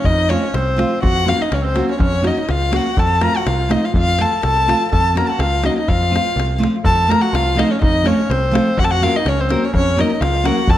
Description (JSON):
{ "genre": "balkan folk, Balkan wedding band", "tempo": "124 BPM", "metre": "2/4", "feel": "straight", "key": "F phrygian dominant", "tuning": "A4 = 441 Hz", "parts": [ { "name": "dark violin", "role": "melody", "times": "0.0-10.8 s", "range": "C5 to Bb5", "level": "-19 LUFS", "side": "left 2 dB", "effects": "none" }, { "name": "clear clarinet", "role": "second line", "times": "0.0-10.8 s", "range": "C4 to Bb4", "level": "-24 LUFS", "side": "right 4 dB", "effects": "none" }, { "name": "davul", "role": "percussion", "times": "0.0-10.8 s", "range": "none", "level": "-22 LUFS", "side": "left 1 dB", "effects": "none" }, { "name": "picked electric bass", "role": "bass", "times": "0.1-10.8 s", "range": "C2 to F2", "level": "-20 LUFS", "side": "equal", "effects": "none" }, { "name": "nylon-string guitar", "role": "accompaniment", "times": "0.3-10.6 s", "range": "F3 to Bb4", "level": "-21 LUFS", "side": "equal", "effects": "none" } ], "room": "moderate recital hall reverb, RT60 1.2 s", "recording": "none", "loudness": "-14 LUFS", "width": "side -12 dB against mid", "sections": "0.0-6.8 A section; 6.8-10.8 A section", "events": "none", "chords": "0.0 F; 1.0 Gb; 3.0 F; 4.9 Gb/F; 5.9 F; 8.8 Gb", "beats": "| 0.05 0.54 | 1.03 1.51 | 2.00 2.49 | 2.97 3.46 | 3.94 4.43 | 4.91 5.40 | 5.88 6.37 | 6.85 7.33 | 7.81 8.29 | 8.78 9.26 | 9.74 10.22 | 10.70" }